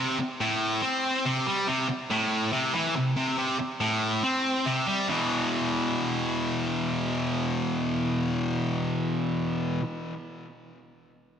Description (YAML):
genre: rock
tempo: 140 BPM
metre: 4/4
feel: straight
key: E minor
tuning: A4 = 439 Hz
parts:
  - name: high-gain distorted guitar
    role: solo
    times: 0.0-9.8 s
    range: E2 to C4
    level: -25 LUFS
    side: equal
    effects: distortion, digital delay
room: moderate plate reverb, RT60 3.4 s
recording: bright 1980s-style digital production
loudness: -25 LUFS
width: side -8 dB against mid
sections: 0.0-1.7 A section; 1.7-5.1 B section; 5.1-8.5 C section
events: none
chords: 0.0 C5; 5.1 E5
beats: 0.41 0.83 1.25 | 1.68 2.10 2.53 2.95 | 3.38 3.81 4.23 4.66 | 5.09 5.52 5.95 6.38 | 6.81 7.24 7.67 8.10